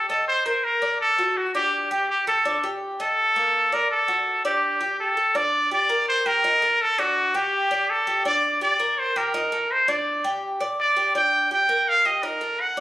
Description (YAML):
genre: latin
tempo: 166 BPM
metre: 4/4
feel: straight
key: G minor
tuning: A4 = 440 Hz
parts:
  - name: trumpet with straight mute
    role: melody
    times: 0.0-12.8 s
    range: F#4 to G5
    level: -20 LUFS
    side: equal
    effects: none
  - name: Cuban tres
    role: arpeggios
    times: 0.0-12.8 s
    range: Bb3 to Eb5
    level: -28 LUFS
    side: equal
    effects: none
room: moderate large studio reverb, RT60 1.5 s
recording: recorded on a phone in the room, club reverb, compression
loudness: -20 LUFS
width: side -14 dB against mid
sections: 0.0-5.4 A section; 5.4-12.8 B section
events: none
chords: 0.3 Eb5; 1.0 D; 1.7 Gsus2; 3.2 Eb5; 3.9 D; 4.6 Gsus2; 5.4 G5; 6.1 Eb; 6.8 D; 7.5 Gsus2; 9.0 Eb; 9.7 D5; 10.4 G5; 11.9 Eb